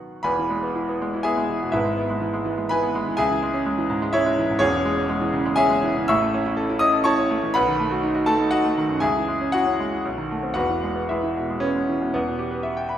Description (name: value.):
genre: classical, virtuoso piano study.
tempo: 112-127 BPM.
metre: 3/4.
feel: rubato.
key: E major.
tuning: A4 = 439 Hz.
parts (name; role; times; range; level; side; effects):
bright concert grand piano; solo; 0.0-13.0 s; E1 to E6; -20 LUFS; equal; none.
room: wet recital hall reverb, RT60 1.4 s.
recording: minimal, uncompressed stereo recording.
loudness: -20 LUFS.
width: side -10 dB against mid.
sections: 0.3-12.1 A section.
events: none.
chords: 0.3 E; 1.7 E/G#; 3.2 C#m; 4.6 C#m/E; 6.1 A; 7.5 B7; 9.0 C#m; 10.0 B7b9; 10.6 E; 12.1 Em.